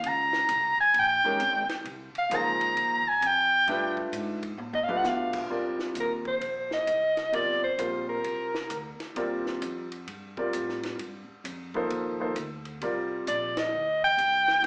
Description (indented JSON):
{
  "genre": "modal jazz",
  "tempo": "131 BPM",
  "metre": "4/4",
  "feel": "swing 65% on 8ths",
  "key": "C dorian from 5.5 s",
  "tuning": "A4 = 443 Hz",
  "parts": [
    { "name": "dark soprano saxophone", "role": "melody", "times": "0.0-9.0, 13.3-14.6 s", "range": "Bb4 to Bb5", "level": "-24 LUFS", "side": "equal", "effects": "none" },
    { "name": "upright bass", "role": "bass", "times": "0.0-14.7 s", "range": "G1 to B2", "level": "-41 LUFS", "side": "equal", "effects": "none" },
    { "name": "compact cocktail drum kit", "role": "drums", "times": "0.0-14.7 s", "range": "crash cymbal, hi-hat, kick drum, ride cymbal, snare drum, toms", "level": "-39 LUFS", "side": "equal", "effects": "slapback echo" },
    { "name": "warm baby grand piano", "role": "accompaniment", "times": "1.2-13.5 s", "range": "Eb3 to D5", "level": "-31 LUFS", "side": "equal", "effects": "slapback echo" }
  ],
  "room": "moderate digital room reverb, RT60 1.1 s, small room ambience",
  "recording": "live gig heard through the venue's PA, club reverb, small speaker sound",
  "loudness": "-25 LUFS",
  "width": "side -36 dB against mid",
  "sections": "0.0-5.5 A section; 5.5-14.7 B section",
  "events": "soprano saxophone solo 0.0-5.5; drum fill 4.6-5.0; band accent 13.5",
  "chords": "0.0 Bbm9; 1.9 Fmadd9; 3.7 G7; 5.5 Cm7",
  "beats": "| 0.03 0.49 0.94 1.40 | 1.86 2.31 2.77 3.22 | 3.68 4.14 4.59 5.05 | 5.50 5.96 6.42 6.88 | 7.33 7.79 8.25 8.70 | 9.16 9.62 10.07 10.53 | 10.99 11.45 11.90 12.36 | 12.82 13.27 13.73 14.19 | 14.64"
}